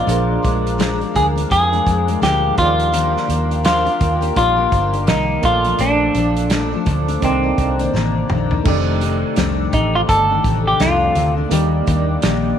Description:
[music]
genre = indie pop, bedroom pop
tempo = 84 BPM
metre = 4/4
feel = swing 60% on 16ths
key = unclear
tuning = A4 = 441 Hz
[part]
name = semi-hollow electric guitar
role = melody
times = 0.0-11.3 s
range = C4 to A4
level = -18 LUFS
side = equal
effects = lush chorus, slapback echo
[part]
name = picked steel-string acoustic guitar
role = accompaniment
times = 0.0-12.6 s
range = F2 to G4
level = -22 LUFS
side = left 10 dB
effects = analog chorus, warbly pitch drift
[part]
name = soft electric-piano-like synth keys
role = accompaniment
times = 0.0-12.6 s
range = G3 to D5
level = -27 LUFS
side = right 13 dB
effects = chorus, tremolo
[part]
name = warbly tape-like pad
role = sustained chords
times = 0.0-12.6 s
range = Bb3 to D6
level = -26 LUFS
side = right 1 dB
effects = chorus, built-in reverb
[part]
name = vintage muted fingered electric bass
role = bass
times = 0.1-12.5 s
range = F1 to F2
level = -20 LUFS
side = right 1 dB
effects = none
[part]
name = loose indie drum kit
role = drums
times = 0.1-12.4 s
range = crash cymbal, hi-hat, kick drum, snare drum, toms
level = -22 LUFS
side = right 1 dB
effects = none
[sound]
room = light reverb, small room ambience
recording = 1960s-style stereo with parts hard left and right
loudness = -14 LUFS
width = side -9 dB against mid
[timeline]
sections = 0.0-8.7 A section; 8.7-12.6 B section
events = drum fill 7.9-8.7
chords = 0.1 Bb7; 2.6 Ebmaj9; 5.4 Bbmaj7; 7.2 Cm9; 8.7 F13; 11.5 Ebmaj7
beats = | 0.08 0.79 1.51 2.22 | 2.94 3.65 4.36 5.08 | 5.79 6.51 7.22 7.94 | 8.65 9.37 10.09 10.80 | 11.52 12.23

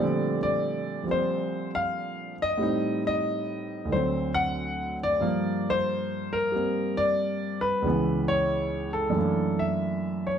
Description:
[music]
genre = solo jazz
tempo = 91 BPM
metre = 4/4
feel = swing 67% on 8ths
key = Bb major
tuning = A4 = 440 Hz
[part]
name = warm concert grand piano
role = solo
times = 0.0-10.4 s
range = Db2 to F#5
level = -25 LUFS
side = equal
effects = none
[sound]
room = moderate large studio reverb, RT60 1.1 s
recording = dark, warm production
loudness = -25 LUFS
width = side -8 dB against mid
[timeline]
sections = 0.0-10.4 A section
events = none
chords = 0.0 Bbmaj13; 2.6 Am7b5; 3.9 D7; 5.2 Gm7; 7.8 Dbm7; 9.2 Gb7alt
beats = 0.61 1.27 1.93 | 2.59 3.24 3.90 4.56 | 5.21 5.87 6.53 7.19 | 7.84 8.50 9.16 9.81

